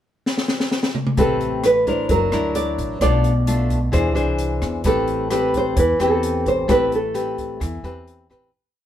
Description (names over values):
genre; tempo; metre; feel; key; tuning
bossa nova; 130 BPM; 4/4; straight; A minor; A4 = 441 Hz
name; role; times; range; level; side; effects
open jazz drum kit; drums; 0.3-8.4 s; hi-hat, kick drum, rim click, snare drum, toms; -24 LUFS; equal; none
nylon-string guitar; melody; 1.2-8.3 s; A4 to D5; -20 LUFS; right 1 dB; none
nylon-string guitar; accompaniment; 1.2-8.5 s; B2 to B#4; -22 LUFS; left 2 dB; none
upright bass; bass; 1.2-8.5 s; F#1 to E2; -24 LUFS; equal; none
room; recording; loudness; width
moderate studio reverb, RT60 1.0 s; heard from further back in the room; -17 LUFS; side -11 dB against mid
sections
0.0-1.2 pickup bar; 1.2-8.5 A section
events
drum fill 0.3-1.2; fade-out 6.7-8.5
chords
0.0 N.C.; 1.2 Am9; 2.1 F#7alt; 3.0 Bm7b5; 3.9 Eaug7; 4.8 Am9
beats
0.25 0.71 | 1.17 1.63 2.09 2.55 | 3.01 3.47 3.93 4.39 | 4.85 5.31 5.77 6.23 | 6.69 7.15 7.61 8.07